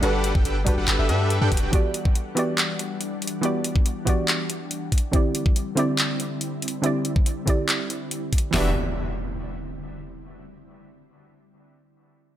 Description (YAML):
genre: future bass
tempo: 141 BPM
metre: 4/4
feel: half-time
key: E minor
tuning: A4 = 440 Hz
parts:
  - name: soft round pluck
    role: accompaniment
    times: 0.0-8.7 s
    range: D3 to D5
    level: -27 LUFS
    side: right 2 dB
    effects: chorus, cassette tape, sidechain pumping, dub echo
  - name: ethereal airy pad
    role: sustained chords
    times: 0.0-8.7 s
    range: D3 to F#5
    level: -33 LUFS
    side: left 2 dB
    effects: ensemble chorus, built-in reverb, sidechain pumping
  - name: big bright polysynth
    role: riff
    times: 0.0-1.7, 8.5-8.7 s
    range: D4 to A5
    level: -28 LUFS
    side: left 1 dB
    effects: vintage 12-bit sampler grit, sidechain pumping, dub echo
  - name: warm 808-style bass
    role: bass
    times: 0.0-1.7, 8.5-8.7 s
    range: E1 to G2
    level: -24 LUFS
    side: equal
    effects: sidechain pumping
  - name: trap drum kit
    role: drums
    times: 0.0-8.5 s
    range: handclaps, hi-hat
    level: -26 LUFS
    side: equal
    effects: none
  - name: pop drum kit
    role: drums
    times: 0.4-8.6 s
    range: hi-hat, kick drum, snare drum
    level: -21 LUFS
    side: equal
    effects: none
  - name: impact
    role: sound effects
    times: 8.5-10.2 s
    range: none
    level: -31 LUFS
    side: equal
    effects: none
room: light reverb, digital ambience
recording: none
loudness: -21 LUFS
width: side -12 dB against mid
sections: 0.0-8.5 A section; 8.5-10.2 B section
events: filter sweep on 808-style bass 0.0-8.5; filter sweep on ambient pad 0.0-8.5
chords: 0.0 Gmaj9; 1.5 Em9; 4.9 D9sus4; 8.5 Em9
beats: | 0.03 0.45 0.88 1.30 | 1.73 2.15 2.58 3.01 | 3.43 3.86 4.28 4.71 | 5.13 5.56 5.99 6.41 | 6.84 7.26 7.69 8.11 | 8.54 8.96 9.39 9.81